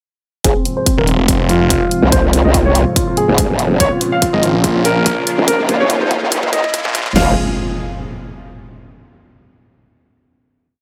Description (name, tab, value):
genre	heavy wobble dubstep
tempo	143 BPM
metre	4/4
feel	swing 54% on 16ths, half-time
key	F minor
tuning	A4 = 440 Hz
part	warm concert grand piano	melody	0.4-7.3 s	Bb3 to F5	-20 LUFS	equal	low-pass filter, digital delay
part	lush unison pad	sustained chords	0.4-7.4 s	Ab2 to Ab4	-24 LUFS	equal	chorus, sidechain pumping
part	growl bass	bass	0.4-7.4 s	F1 to Db2	-17 LUFS	equal	chorus, overdrive
part	big-room dance drum kit	drums	0.4-7.3 s	crash cymbal, kick drum, snare drum	-21 LUFS	equal	studio reverb
part	electronic hi-hat	drums	0.4-7.0 s	none	-21 LUFS	equal	studio reverb
part	riser and impact	sound effects	3.0-8.8 s	none	-28 LUFS	equal	none
part	snarling distorted saw bass	bass	1.0-1.8, 4.3-7.0 s	Eb1 to Bb1	-18 LUFS	equal	distortion, overdrive
room	light reverb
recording	high-pass filter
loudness	-14 LUFS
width	mono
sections	0.4-7.2 build; 7.2-8.8 final chord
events	build-up 0.4-7.2; filter sweep on analog synth pad 0.4-7.2; filter sweep on grand piano 0.4-7.2; filter sweep 0.4-7.2; drum fill 3.8-7.2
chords	0.4 Fm; 3.8 Bbm; 7.2 Fm